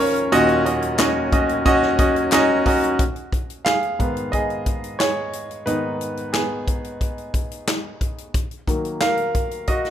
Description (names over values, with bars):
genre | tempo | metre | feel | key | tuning
piano-driven pop | 90 BPM | 4/4 | straight | unclear | A4 = 439 Hz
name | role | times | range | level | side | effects
clear concert grand piano | accompaniment | 0.0-9.9 s | Eb2 to Bb5 | -19 LUFS | equal | none
percussive tonewheel organ | sustained chords | 0.0-3.0 s | F3 to Db5 | -30 LUFS | equal | overdrive, chorus vibrato, slow rotary speaker
natural country drum kit | drums | 0.2-9.9 s | handclaps, hi-hat, kick drum, snare drum | -23 LUFS | equal | none
group handclap | percussion | 1.0-2.5 s | none | -30 LUFS | left 6 dB | none
room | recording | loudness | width
light reverb, small room ambience | rough home demo mix | -18 LUFS | side -10 dB against mid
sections
0.0-3.0 A section; 3.0-9.9 B section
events
grand piano fill 1.0-3.0; grand piano solo 3.0-9.9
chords
0.3 Ebm7; 3.0 Abm; 8.3 Ebm